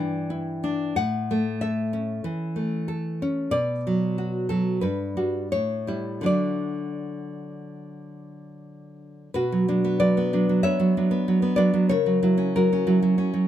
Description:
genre	romantic piece for solo classical guitar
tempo	74-97 BPM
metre	4/4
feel	rubato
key	D major, B minor from 9.4 s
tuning	A4 = 441 Hz
part	nylon-string guitar	solo	0.0-13.5 s	G2 to G5	-22 LUFS	equal	none
room	light reverb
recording	none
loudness	-22 LUFS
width	side -11 dB against mid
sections	0.0-9.4 A section; 9.4-13.5 B section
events	none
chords	0.0 Em7/G; 0.9 A; 3.5 Bm; 4.8 Gmaj7; 5.5 A7; 6.3 D; 9.4 Bm; 11.9 F#7/C#

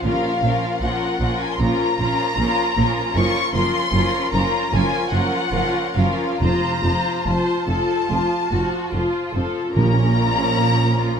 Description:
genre	classical, slow romantic movement for symphony orchestra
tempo	66-78 BPM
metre	4/4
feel	rubato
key	Bb minor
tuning	A4 = 440 Hz
part	warm symphonic violin section	melody	0.0-11.2 s	F5 to Db6	-23 LUFS	left 3 dB	none
part	clear symphonic violin section	second line	0.0-11.2 s	Bb3 to C5	-26 LUFS	left 1 dB	none
part	rich symphonic viola section	accompaniment	0.0-11.2 s	F3 to F4	-24 LUFS	left 1 dB	none
part	clear symphonic double bass section	bass	0.0-11.2 s	F1 to Bb1	-24 LUFS	right 3 dB	none
part	rich studio cello section	bass	0.0-11.2 s	F2 to Bb2	-25 LUFS	right 2 dB	none
part	timpani	percussion	0.1-1.2, 6.4-10.9 s	F2 to Bb2	-25 LUFS	equal	none
room	moderate recital hall reverb, RT60 1.7 s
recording	close, detailed microphones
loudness	-17 LUFS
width	side -7 dB against mid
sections	0.0-11.2 A section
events	none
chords	0.0 Bbm; 3.1 Gbmaj7; 6.4 F; 9.8 Bbm

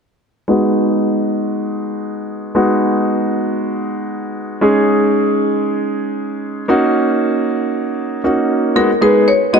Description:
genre	pop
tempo	116 BPM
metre	4/4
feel	straight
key	G# minor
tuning	A4 = 440 Hz
part	clear grand piano	accompaniment	0.5-9.6 s	G#3 to G#4	-14 LUFS	right 1 dB	low-pass filter
part	marimba with medium hard mallets	melody	8.8-9.6 s	A#4 to D#5	-13 LUFS	left 3 dB	tape echo
room	moderate lush hall reverb, RT60 2.9 s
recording	dark, warm production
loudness	-14 LUFS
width	side -6 dB against mid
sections	0.5-8.8 A section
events	filter sweep on grand piano 0.5-8.8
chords	0.5 G#m7; 4.6 C#sus2; 6.7 D#m7; 8.8 G#m7

